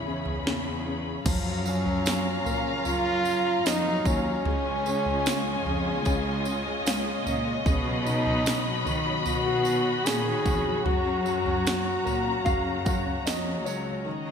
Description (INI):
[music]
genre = pop ballad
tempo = 75 BPM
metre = 4/4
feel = straight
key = F# major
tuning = A4 = 440 Hz
[part]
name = clear French horn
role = melody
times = 0.0-14.3 s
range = C#4 to G#4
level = -29 LUFS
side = equal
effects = ping-pong delay
[part]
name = clear grand piano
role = accompaniment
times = 0.0-14.3 s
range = G#2 to A#5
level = -32 LUFS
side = left 3 dB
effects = lush chorus
[part]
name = muted studio string section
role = sustained chords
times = 0.0-14.3 s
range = C#4 to B5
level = -31 LUFS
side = left 1 dB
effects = none
[part]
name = dark studio cello section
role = bass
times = 0.1-14.0 s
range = C#2 to D#3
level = -32 LUFS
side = right 1 dB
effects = none
[part]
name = house drum kit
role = drums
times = 0.3-13.5 s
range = crash cymbal, kick drum, snare drum, toms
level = -30 LUFS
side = right 1 dB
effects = none
[part]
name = tambourine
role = percussion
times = 1.3-13.8 s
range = none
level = -40 LUFS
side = right 10 dB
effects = none
[sound]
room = moderate lush hall reverb, RT60 2.7 s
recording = bright 1980s-style digital production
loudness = -24 LUFS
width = side -7 dB against mid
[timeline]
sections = 0.0-1.3 A section; 1.3-14.1 B section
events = grand piano fill 6.5-7.7, 11.7-14.1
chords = 0.0 C#m7; 1.3 F#maj7; 4.5 C#add9; 7.7 Badd9; 10.9 F#maj7